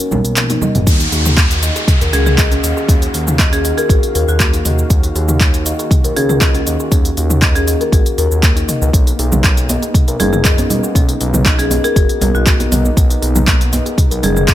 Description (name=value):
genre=afro house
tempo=119 BPM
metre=4/4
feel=straight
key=Eb minor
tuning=A4 = 440 Hz
part: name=warm analog pad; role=sustained chords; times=0.0-14.5 s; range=Eb3 to F5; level=-25 LUFS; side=equal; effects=lush chorus, sidechain pumping
part: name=kalimba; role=arpeggios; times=0.1-14.5 s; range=A#3 to D#5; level=-22 LUFS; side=equal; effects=sidechain pumping, ping-pong delay
part: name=smooth synth bass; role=bass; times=0.1-14.5 s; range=F#1 to Eb2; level=-17 LUFS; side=equal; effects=sidechain pumping
part: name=deep house drum kit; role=drums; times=0.1-14.5 s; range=handclaps, hi-hat, shaker, toms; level=-18 LUFS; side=equal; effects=none
part: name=congas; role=percussion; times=0.1-0.8, 9.3-14.3 s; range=none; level=-20 LUFS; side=right 2 dB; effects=none
part: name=electronic kick drum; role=drums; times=0.9-14.5 s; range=none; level=-13 LUFS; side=equal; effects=none
part: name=downlifter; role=sound effects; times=0.9-4.9 s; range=none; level=-22 LUFS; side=equal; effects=none
part: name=marimba with medium hard mallets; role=melody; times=2.1-14.4 s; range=Gb4 to Ab4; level=-21 LUFS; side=left 3 dB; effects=ping-pong delay
room=digital ambience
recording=none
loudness=-11 LUFS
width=side -13 dB against mid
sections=0.9-14.5 A section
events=break 0.0-0.9; drum fill 0.4-0.9; drop 0.9-14.5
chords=0.0 Bmaj7; 0.9 Ebm7; 8.9 Bmaj7